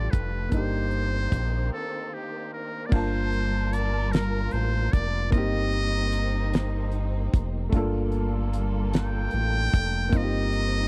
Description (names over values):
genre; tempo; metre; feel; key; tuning
slow six-eight R&B; 50 BPM (dotted quarters); 6/8; straight; G minor; A4 = 440 Hz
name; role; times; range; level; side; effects
trumpet with metal mute; melody; 0.0-10.9 s; G4 to G5; -33 LUFS; equal; none
warm grand piano; accompaniment; 0.0-10.9 s; A3 to A5; -34 LUFS; equal; none
warm studio string section; sustained chords; 0.0-10.9 s; Eb3 to A5; -38 LUFS; equal; none
round analog bass; bass; 0.0-10.9 s; F1 to Bb1; -29 LUFS; equal; none
damped 70s drum kit; drums; 0.1-10.7 s; crash cymbal, hi-hat, kick drum, snare drum; -25 LUFS; equal; none
room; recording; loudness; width
little or no reverb; dry, close 1970s-style studio recording; -26 LUFS; mono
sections
0.0-2.9 A section; 2.9-10.9 B section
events
break 1.7-2.9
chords
0.0 Gsus2; 0.5 Cm7/G; 2.9 Gm9; 5.3 Cm7/G; 7.7 Gm9; 10.1 Cm7/G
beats
| 0.53 1.73 | 2.93 4.13 | 5.33 6.53 | 7.73 8.93 | 10.13